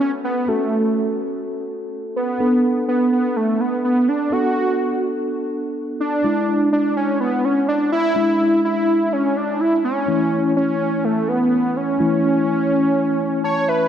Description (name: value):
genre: pop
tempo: 125 BPM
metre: 4/4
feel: straight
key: B minor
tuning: A4 = 441 Hz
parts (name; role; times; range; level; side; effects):
- wide unison lead; melody; 0.0-13.9 s; A3 to C#5; -18 LUFS; right 1 dB; analog delay
- mellow tine electric piano; accompaniment; 0.0-13.9 s; E3 to A5; -22 LUFS; left 2 dB; medium stereo tremolo, analog delay
room: wet plate reverb, RT60 3.4 s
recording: echo-heavy mix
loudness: -17 LUFS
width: side -9 dB against mid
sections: 0.0-13.9 A section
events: tine electric piano fill 13.2-13.9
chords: 0.0 F#m; 2.4 Bm7; 6.2 E7; 10.1 A/E